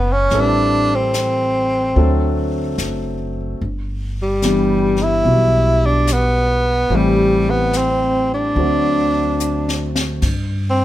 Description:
jazz ballad; 73 BPM; 4/4; swing 67% on 8ths; G major; A4 = 440 Hz
breathy tenor saxophone; melody; 0.0-10.8 s; G3 to E4; -17 LUFS; equal; plate reverb
warm concert grand piano; accompaniment; 0.0-10.3 s; D3 to B4; -21 LUFS; left 1 dB
upright bass; bass; 0.0-10.8 s; F#1 to G2; -20 LUFS; equal
jazz brush drum kit; drums; 0.3-10.8 s; brushed snare drum, hi-hat, kick drum, ride cymbal, snare drum; -24 LUFS; left 2 dB
light reverb; -15 LUFS; side -13 dB against mid
0.0-10.2 A section
drum fill 9.4-10.2
0.3 Am9; 1.9 D7; 3.6 G6; 6.9 Am7; 8.6 D7; 10.2 N.C.
| 0.30 1.13 1.95 2.77 | 3.60 4.42 5.25 6.08 | 6.90 7.73 8.56 9.40 | 10.23

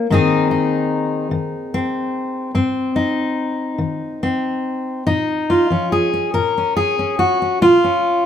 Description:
folk, solo fingerstyle acoustic guitar; 48 BPM (dotted quarters); 6/8; rubato; Bb minor; A4 = 438 Hz
fingerpicked steel-string acoustic guitar; solo; 0.0-8.3 s; Ab2 to Bb4; -16 LUFS; left 1 dB
moderate large studio reverb, RT60 1.1 s; band playing live in one room; -16 LUFS; side -9 dB against mid
0.0-5.1 A section; 5.1-8.3 B section
0.1 Ab; 5.1 Bbm
| 0.10 1.32 | 2.54 3.79 | 5.08 6.37 | 7.64

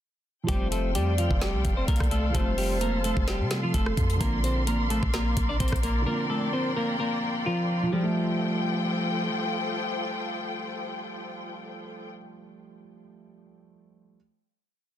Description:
hip hop, trap; 129 BPM; 4/4; half-time; F major; A4 = 438 Hz
dark grand piano; accompaniment; 0.4-14.2 s; D3 to C4; -34 LUFS; right 2 dB; low-pass filter
semi-hollow electric guitar; melody; 0.5-9.3 s; F3 to D5; -30 LUFS; left 1 dB; low-pass filter, ping-pong delay
hollow clarinet-like synth lead; second line; 0.5-4.2 s; A4 to D5; -35 LUFS; left 1 dB; chorus, phaser, ping-pong delay
muted symphonic string section; sustained chords; 0.5-12.1 s; F3 to C6; -32 LUFS; left 2 dB
clean 808-style bass; bass; 0.5-6.1 s; F1 to C3; -28 LUFS; equal
trap drum kit; drums; 0.5-5.9 s; hi-hat, kick drum, rim click, snare drum; -28 LUFS; equal
little or no reverb; dense, heavily limited modern master; -24 LUFS; side -11 dB against mid
0.5-7.9 hook; 7.9-11.6 final chord
0.5 Fadd9; 4.2 Bbadd9; 7.9 Fadd9
| 0.48 0.95 1.42 1.88 | 2.35 2.81 3.28 3.74 | 4.21 4.67 5.14 5.60 | 6.07 6.53 7.00 7.46 | 7.93 8.39 8.86 9.32 | 9.79 10.25 10.72 11.18

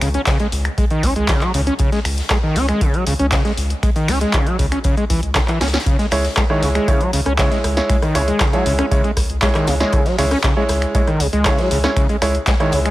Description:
acid house; 118 BPM; 4/4; straight; C# minor; A4 = 440 Hz
overdriven acid bass; riff; 0.0-12.9 s; C#3 to C#4; -20 LUFS; equal; distortion, tube saturation, analog chorus, sidechain pumping, tape echo
round analog bass; bass; 0.0-12.9 s; C#2; -21 LUFS; equal; sidechain pumping
big rock drum kit; drums; 0.0-12.8 s; hi-hat, snare drum; -33 LUFS; left 2 dB; sidechain pumping on hats, high-pass filter on hats, high-pass filter on snare, high-pass filter on room
punchy analog drum machine; drums; 0.0-12.9 s; finger snaps, handclaps, hi-hat, rim click, snare drum; -23 LUFS; equal
electronic kick drum; drums; 0.3-12.6 s; -19 LUFS; equal
clear concert grand piano; stabs; 6.1-12.9 s; G#3 to C#5; -21 LUFS; right 2 dB; tape echo
small room ambience; -15 LUFS; side -16 dB against mid
0.0-12.9 A section
drum fill 5.6
0.0 C#m
0.27 0.78 1.29 | 1.80 2.30 2.81 3.32 | 3.83 4.34 4.85 5.36 | 5.86 6.37 6.88 7.39 | 7.90 8.41 8.91 9.42 | 9.93 10.44 10.95 11.46 | 11.96 12.47

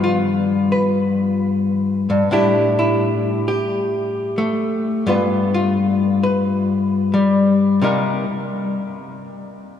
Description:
solo jazz; 87 BPM; 4/4; swing 68% on 8ths; A4 = 443 Hz
archtop guitar, miked and amplified; solo; 0.0-8.3 s; G2 to B4; -16 LUFS; left 2 dB
wet cathedral reverb, RT60 5.1 s; in a vast, echoing space; -16 LUFS; side -9 dB against mid
0.0-7.8 A section; 7.8-9.8 B section
0.0 G7; 2.3 A7sus4; 5.1 G7; 7.8 Cm7
0.23 0.92 1.61 | 2.30 2.99 3.68 4.37 | 5.06 5.75 6.44 7.13 | 7.82

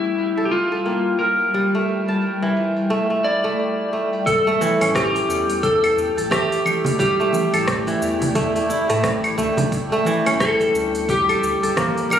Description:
organic downtempo; 88 BPM; 4/4; swing 59% on 16ths; A4 = 440 Hz
clean lap steel guitar; melody; 0.0-12.2 s; E4 to D5; -21 LUFS; left 1 dB; ping-pong delay
granular cloud pad; sustained chords; 0.0-12.2 s; G3 to D6; -27 LUFS; equal; built-in reverb, sidechain pumping
kora; arpeggios; 0.0-12.2 s; E3 to A5; -22 LUFS; right 1 dB; ping-pong delay
deep house drum kit; drums; 0.0-12.2 s; claves, hi-hat, rim click, shaker; -26 LUFS; equal; low-pass filter on hats, low-pass filter on perc, low-pass filter on snare, low-pass filter on room
warm sub bass; bass; 4.3-12.2 s; D1 to A2; -31 LUFS; equal; sidechain pumping
electronic kick drum; drums; 4.3-11.9 s; -29 LUFS; equal
congas; percussion; 4.6-12.2 s; -27 LUFS; right 2 dB
moderate lush hall reverb, RT60 2.1 s; recorded on a phone in the room, studio reverb, compression; -17 LUFS; side -9 dB against mid
0.0-4.3 A section; 4.3-12.2 B section
0.0 Gm; 4.3 A7sus4; 9.7 Gm
0.17 0.86 | 1.54 2.22 2.90 3.58 | 4.27 4.95 5.63 6.31 | 6.99 7.67 8.36 9.04 | 9.72 10.40 11.08 11.77

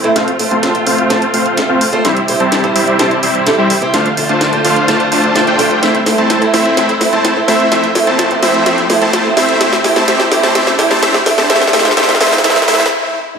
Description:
EDM, festival progressive house; 127 BPM; 4/4; straight; A4 = 440 Hz
picked old ladder-braced acoustic guitar; accompaniment; 0.0-12.8 s; G3 to C5; -17 LUFS; right 2 dB; vintage 12-bit sampler grit, sidechain pumping, digital delay
clear studio string section; sustained chords; 0.0-12.9 s; C3 to G4; -19 LUFS; equal; sidechain pumping, low-pass filter
house drum kit; drums; 0.0-12.9 s; hi-hat, snare drum; -16 LUFS; equal; overdrive
riser; sound effects; 0.4-12.9 s; -25 LUFS; right 1 dB
supersaw chords; riff; 0.2-12.8 s; G3 to A5; -13 LUFS; equal; sidechain pumping, low-pass filter, digital delay
wide detuned saw bass; bass; 0.2-12.8 s; barely audible
wet lush hall reverb, RT60 1.9 s, digital ambience; high-pass filter; -10 LUFS; side -6 dB against mid
0.0-13.4 A section
build-up 0.0-13.4; drum fill 0.0-12.9; filter sweep on supersaw synth 0.0-13.4; stop 12.9-13.4
0.2 F/A; 2.0 C; 3.9 Dm7; 5.8 Am; 7.7 F/A; 9.6 C; 11.5 Dm7
| 0.16 0.63 1.10 1.57 | 2.05 2.52 2.99 3.46 | 3.94 4.41 4.88 5.36 | 5.83 6.30 6.77 7.24 | 7.72 8.19 8.66 9.13 | 9.61 10.08 10.55 11.02 | 11.50 11.97 12.44 12.91

